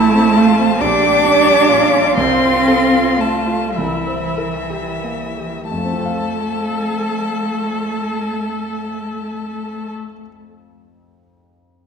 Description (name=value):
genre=classical, slow romantic movement for piano quartet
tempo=29-46 BPM (dotted quarters)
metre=6/8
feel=rubato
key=F major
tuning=A4 = 439 Hz
part: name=warm violin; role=melody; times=0.0-9.9 s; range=E5 to D6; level=-21 LUFS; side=left 7 dB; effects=none
part: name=warm cello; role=second line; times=0.0-9.9 s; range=E3 to D4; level=-17 LUFS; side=right 3 dB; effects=none
part: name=clear concert grand piano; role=accompaniment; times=0.0-11.9 s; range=A1 to F5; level=-23 LUFS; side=left 1 dB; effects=none
part: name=rich viola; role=accompaniment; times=0.0-9.9 s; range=E4 to A4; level=-23 LUFS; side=equal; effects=none
room=wet concert hall reverb, RT60 1.8 s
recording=minimal, uncompressed stereo recording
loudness=-14 LUFS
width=side -6 dB against mid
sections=0.0-5.7 A section; 5.7-9.5 B section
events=slowing down 0.0-5.7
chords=0.0 F/A; 0.8 Gm/Bb; 2.2 F/C; 3.8 C7; 5.7 F